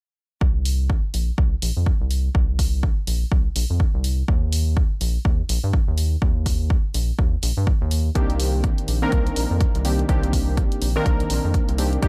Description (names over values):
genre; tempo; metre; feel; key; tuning
deep house; 124 BPM; 4/4; swing 60% on 16ths; C minor; A4 = 440 Hz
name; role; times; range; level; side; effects
rubbery square bass; bass; 0.4-12.1 s; Bb1 to G2; -25 LUFS; equal; sidechain pumping
electronic kick drum; drums; 0.4-12.1 s; none; -23 LUFS; equal; none
electronic hi-hat; drums; 0.7-12.1 s; none; -33 LUFS; equal; none
warm analog keys; stabs; 8.1-12.1 s; Eb3 to Bb4; -27 LUFS; equal; chorus, sidechain pumping, tape echo
room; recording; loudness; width
digital ambience; none; -21 LUFS; mono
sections
0.4-12.1 A section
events
none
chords
0.4 Bbsus2; 4.3 Eb5; 8.2 Cm9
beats
| 0.41 0.90 1.38 1.86 | 2.35 2.83 3.32 3.80 | 4.28 4.77 5.25 5.74 | 6.22 6.70 7.19 7.67 | 8.15 8.64 9.12 9.61 | 10.09 10.57 11.06 11.54 | 12.03